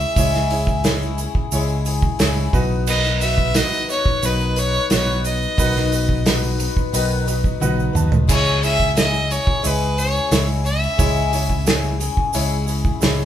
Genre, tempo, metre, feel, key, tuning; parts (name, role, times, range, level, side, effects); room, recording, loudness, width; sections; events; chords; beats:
folk rock and heartland rock; 89 BPM; 4/4; straight; A4 = 441 Hz
rich fiddle; melody; 0.0-11.6 s; B4 to E5; -22 LUFS; equal
picked twelve-string acoustic guitar; accompaniment; 0.0-13.2 s; B2 to B4; -26 LUFS; left 7 dB
picked electric bass; bass; 0.0-13.2 s; B1 to D#2; -21 LUFS; equal
tube shaker; percussion; 0.0-13.2 s; -31 LUFS; right 9 dB
bright upright piano; accompaniment; 0.2-13.2 s; D#4 to A5; -28 LUFS; right 2 dB
unplugged drum kit; drums; 0.2-13.2 s; crash cymbal, hi-hat, kick drum, snare drum, splash cymbal, toms; -21 LUFS; right 1 dB
moderate large studio reverb, RT60 1.3 s; band playing live in one room; -16 LUFS; side -10 dB against mid
0.0-13.2 A section
upright piano fill 6.9-8.3; drum fill 7.6-8.3
0.0 C#m; 2.5 B; 8.3 C#m
| 0.17 0.84 1.52 2.20 | 2.88 3.56 4.23 4.91 | 5.58 6.26 6.94 7.61 | 8.29 8.96 9.64 10.31 | 10.99 11.67 12.34 13.02